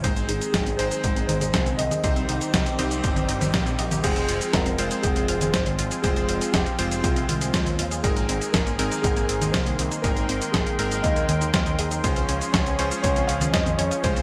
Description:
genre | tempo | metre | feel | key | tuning
italo disco | 120 BPM | 4/4 | straight | unclear | A4 = 439 Hz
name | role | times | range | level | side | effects
dark concert grand piano | melody | 0.0-14.2 s | F4 to F5 | -32 LUFS | equal | subtle chorus, delay
warm analog pad | sustained chords | 0.0-14.2 s | Eb3 to C6 | -33 LUFS | equal | chorus, vintage 12-bit sampler grit
analog pluck | arpeggios | 0.0-14.2 s | G3 to Ab4 | -36 LUFS | equal | none
bright electric grand piano | stabs | 0.0-14.2 s | G3 to C5 | -33 LUFS | equal | vintage 12-bit sampler grit, delay
picked electric bass with an envelope filter | bass | 0.0-14.2 s | F1 to F2 | -32 LUFS | equal | tube saturation
dusty soul sampler-style drum kit | drums | 0.0-14.2 s | cabasa, congas, crash cymbal, hi-hat, snare drum | -29 LUFS | equal | overdrive
electronic kick drum | drums | 0.0-14.1 s | none | -29 LUFS | equal | none
room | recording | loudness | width
moderate plate reverb, RT60 2.2 s | bright 1980s-style digital production | -23 LUFS | mono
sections
0.0-4.0 A section; 4.0-14.2 B section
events
filter sweep on analog synth pad 0.0-4.0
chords
0.0 Ab; 2.0 Cm; 4.0 Fm; 8.0 Abadd9; 12.0 Dbmaj7

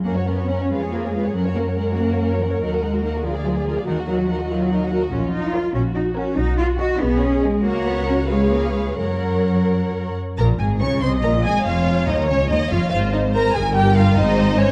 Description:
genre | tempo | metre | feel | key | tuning
quick classical-period movement for string orchestra | 95 BPM (dotted quarters) | 6/8 | rubato | F# major, Db major from 10.4 s | A4 = 437 Hz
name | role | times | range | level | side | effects
warm studio violin section | melody | 0.0-14.7 s | C#5 to Db6 | -31 LUFS | equal | none
warm studio cello section | bass | 0.0-14.7 s | Db2 to F#4 | -24 LUFS | equal | none
warm studio double bass section | bass | 0.0-14.7 s | F1 to F#2 | -25 LUFS | equal | none
warm studio violin section | second line | 0.1-14.7 s | C#4 to D#5 | -28 LUFS | equal | none
warm studio viola section | accompaniment | 0.7-14.7 s | D#4 to Eb5 | -28 LUFS | equal | none
room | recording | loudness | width
moderate scoring stage reverb, RT60 1.8 s | dark, warm production | -20 LUFS | mono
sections
0.1-10.4 A section; 10.4-14.7 B section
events
none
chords
0.1 F#; 0.7 C#7/E#; 1.3 F#; 2.6 D#m; 3.2 A#7/D; 3.9 D#m; 5.1 A#m; 5.7 F#/A#; 6.4 B; 7.0 G#m/B; 7.6 F#/C#; 8.3 C#7; 9.0 F#; 10.4 Db5; 11.0 Ab; 11.7 Db/F; 12.9 Ab; 13.6 Gm7; 14.2 Ab

